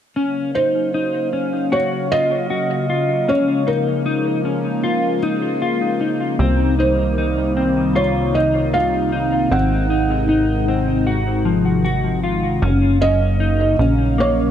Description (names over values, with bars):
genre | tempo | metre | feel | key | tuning
dream pop | 77 BPM | 4/4 | straight | Gb lydian | A4 = 443 Hz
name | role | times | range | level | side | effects
phased analog pad | sustained chords | 0.2-14.5 s | C3 to F5 | -22 LUFS | right 1 dB | phaser, chorus
mellow electric guitar | arpeggios | 0.2-14.5 s | F3 to Gb4 | -20 LUFS | left 4 dB | analog chorus, analog delay
felt-muted upright piano | melody | 0.6-14.5 s | Bb4 to Gb5 | -21 LUFS | right 2 dB | analog delay
plucky analog bass | bass | 6.4-14.5 s | Gb1 to C2 | -20 LUFS | right 1 dB | none
room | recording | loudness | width
moderate echo chamber reverb, RT60 1.2 s, digital ambience | echo-heavy mix | -16 LUFS | side -9 dB against mid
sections
0.2-12.6 A section; 12.6-14.5 B section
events
none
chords
0.2 Gbmaj7; 3.3 Bbm7; 6.4 Cm7; 9.5 Ab7; 12.6 Gbmaj7